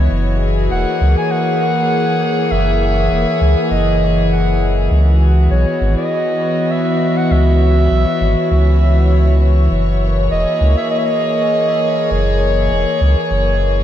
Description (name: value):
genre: ambient dub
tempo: 100 BPM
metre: 4/4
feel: swing 54% on 16ths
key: unclear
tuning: A4 = 442 Hz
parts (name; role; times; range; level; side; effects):
- warm chamber string section; sustained chords; 0.0-13.8 s; E3 to C#5; -17 LUFS; left 1 dB; none
- warm sub bass; bass; 0.0-13.8 s; E1 to C#2; -14 LUFS; equal; tube saturation
- mellow clarinet; melody; 0.7-13.8 s; C#5 to G#5; -19 LUFS; equal; dub echo
room: moderate lush hall reverb, RT60 2.6 s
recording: dreamy mix soaked in reverb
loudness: -12 LUFS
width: side -11 dB against mid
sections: 0.0-13.8 A section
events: none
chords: 0.1 F#9; 4.9 C#m11; 9.7 F#13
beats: | 0.11 0.71 1.31 1.91 | 2.51 3.11 3.71 4.31 | 4.91 5.51 6.11 6.71 | 7.31 7.91 8.51 9.11 | 9.71 10.31 10.91 11.51 | 12.11 12.71 13.31